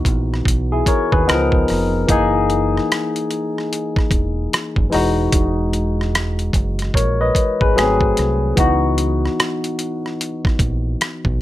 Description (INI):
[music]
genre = R&B, neo-soul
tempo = 74 BPM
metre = 4/4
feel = swing 63% on 16ths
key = C# dorian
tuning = A4 = 441 Hz
[part]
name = barky tine electric piano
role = accompaniment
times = 0.0-11.4 s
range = E3 to D#5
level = -19 LUFS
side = left 2 dB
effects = overdrive, lush chorus
[part]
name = deep dub fingered electric bass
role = bass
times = 0.0-11.4 s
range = E1 to D#2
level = -21 LUFS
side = right 1 dB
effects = none
[part]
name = boom bap sampler-style drum kit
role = drums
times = 0.1-11.4 s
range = hi-hat, kick drum, rim click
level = -19 LUFS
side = equal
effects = none
[sound]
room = light reverb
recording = none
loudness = -16 LUFS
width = side -14 dB against mid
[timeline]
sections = 0.0-11.4 A section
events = none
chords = 0.0 C#m11; 1.3 C#13; 2.1 Emaj9; 7.8 G#7b9; 8.6 C#m11